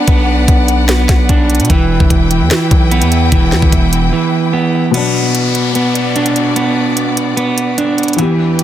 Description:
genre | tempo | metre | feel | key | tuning
hip hop, trap | 148 BPM | 4/4 | half-time | B minor | A4 = 440 Hz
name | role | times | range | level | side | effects
clear symphonic string section | sustained chords | 0.0-8.6 s | E2 to G5 | -20 LUFS | left 4 dB | none
electric guitar at the edge of break-up | arpeggios | 0.0-8.6 s | E3 to D4 | -14 LUFS | right 3 dB | ping-pong delay
distorted 808-style bass | bass | 0.1-4.1 s | E1 to B2 | -14 LUFS | left 1 dB | distortion
trap drum kit | drums | 0.1-8.6 s | hi-hat, kick drum, snare drum | -12 LUFS | equal | none
felt-muted upright piano | accompaniment | 4.9-8.6 s | B2 to G4 | -18 LUFS | left 7 dB | none
downlifter | sound effects | 4.9-8.2 s | none | -22 LUFS | left 3 dB | none
room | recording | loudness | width
light reverb | dense, heavily limited modern master | -10 LUFS | side -11 dB against mid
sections
0.0-4.9 A section; 4.9-8.6 B section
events
break 4.1-4.9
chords
0.0 Bm; 1.7 Em; 4.9 Bm

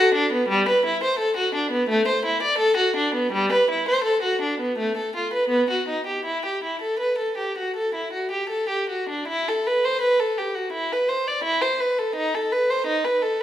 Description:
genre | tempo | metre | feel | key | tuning
classical, baroque-style suite movement for unaccompanied violin | 76-87 BPM | 4/4 | rubato | E minor | A4 = 440 Hz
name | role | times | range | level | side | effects
rich violin | solo | 0.0-13.4 s | G3 to D5 | -20 LUFS | equal | none
room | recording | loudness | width
wet recital hall reverb, RT60 1.5 s | minimal, uncompressed stereo recording | -20 LUFS | side -11 dB against mid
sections
0.0-9.3 A section; 9.3-13.4 B section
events
none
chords
none

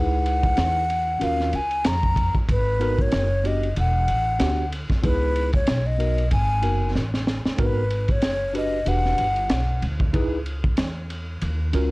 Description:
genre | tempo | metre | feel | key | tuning
hip hop, jazz-hop | 94 BPM | 4/4 | swing 58% on 16ths | G# minor | A4 = 440 Hz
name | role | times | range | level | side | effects
breathy mellow jazz flute | melody | 0.0-9.8 s | B4 to A#5 | -24 LUFS | left 1 dB | none
tine electric piano | accompaniment | 0.0-11.9 s | B3 to B4 | -27 LUFS | right 1 dB | overdrive, fast stereo tremolo
upright bass | bass | 0.0-11.9 s | E1 to E#2 | -24 LUFS | equal | transformer saturation
crunchy breakbeat drum kit | drums | 0.3-11.9 s | hi-hat, kick drum, ride cymbal, snare drum | -25 LUFS | equal | none
room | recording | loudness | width
little or no reverb | dry, gritty hardware recording, cassette tape | -20 LUFS | side -22 dB against mid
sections
0.0-7.6 A section; 7.6-11.9 A section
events
drum fill 7.0-7.6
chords
0.0 C#m9; 1.2 D#m9; 2.5 G#m9; 3.8 Em9; 5.0 C#m9; 6.3 G#m9; 8.9 Em9; 10.1 C#m9

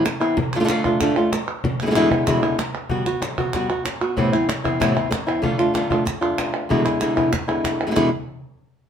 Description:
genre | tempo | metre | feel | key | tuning
flamenco | 190 BPM | 4/4 | straight | E phrygian dominant | A4 = 436 Hz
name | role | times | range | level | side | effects
flamenco guitar | melody | 0.0-8.1 s | E2 to F#4 | -19 LUFS | equal | none
cajon | percussion | 0.1-8.0 s | none | -26 LUFS | left 2 dB | none
palmas hand claps | percussion | 0.1-8.0 s | none | -28 LUFS | right 4 dB | none
room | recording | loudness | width
moderate studio reverb, RT60 0.7 s | minimal, uncompressed stereo recording | -18 LUFS | side -8 dB against mid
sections
0.0-8.0 A section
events
none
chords
0.4 Dm; 1.6 E7; 2.9 Gmaj7; 4.2 Amadd9; 5.4 Dm; 6.7 E7; 8.0 E5

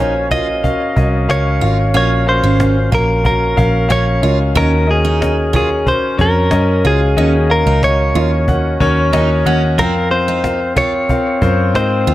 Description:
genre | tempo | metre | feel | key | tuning
piano-driven pop | 92 BPM | 4/4 | straight | unclear | A4 = 440 Hz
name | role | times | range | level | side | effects
direct-recorded clean electric guitar | melody | 0.0-12.1 s | Ab4 to Eb5 | -17 LUFS | equal | none
warm concert grand piano | accompaniment | 0.0-12.1 s | Bb2 to Ab5 | -18 LUFS | left 2 dB | none
picked steel-string acoustic guitar | riff | 0.0-12.1 s | Bb3 to F4 | -23 LUFS | right 7 dB | none
vintage muted picked electric bass | bass | 0.0-12.1 s | Ab1 to Ab2 | -16 LUFS | equal | none
cajon | drums | 0.2-12.1 s | none | -21 LUFS | equal | none
room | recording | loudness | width
light reverb | none | -12 LUFS | side -15 dB against mid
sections
0.0-12.1 A section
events
none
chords
0.0 Gbmaj7; 4.6 Ebm7; 9.8 Fsus4

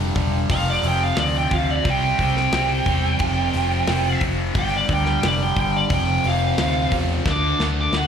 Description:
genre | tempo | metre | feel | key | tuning
hard rock | 89 BPM | 4/4 | straight | unclear | A4 = 441 Hz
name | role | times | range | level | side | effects
overdriven electric guitar | riff | 0.0-8.1 s | F2 to D4 | -28 LUFS | left 12 dB | phaser, slapback echo
sludgy distorted guitar | riff | 0.0-8.1 s | F2 to D4 | -27 LUFS | right 10 dB | overdrive
sludgy distorted guitar | riff | 0.0-8.1 s | F2 to D4 | -28 LUFS | left 2 dB | overdrive, slapback echo
picked electric bass | bass | 0.0-8.1 s | E1 to E2 | -23 LUFS | left 1 dB | none
tight metal drum kit | drums | 0.2-8.1 s | hi-hat, kick drum, snare drum | -26 LUFS | left 1 dB | none
high-gain lead guitar | melody | 0.5-8.1 s | D5 to D6 | -23 LUFS | right 2 dB | distortion, slapback echo
room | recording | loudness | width
studio reverb | live gig heard through the venue's PA, club reverb | -18 LUFS | side -7 dB against mid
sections
0.0-8.1 A section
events
lead electric guitar solo 0.0-8.1; drum fill 7.3-8.1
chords
0.0 G5; 0.5 F5; 1.9 C; 3.2 F5; 4.6 G5; 5.9 F5; 7.3 D5

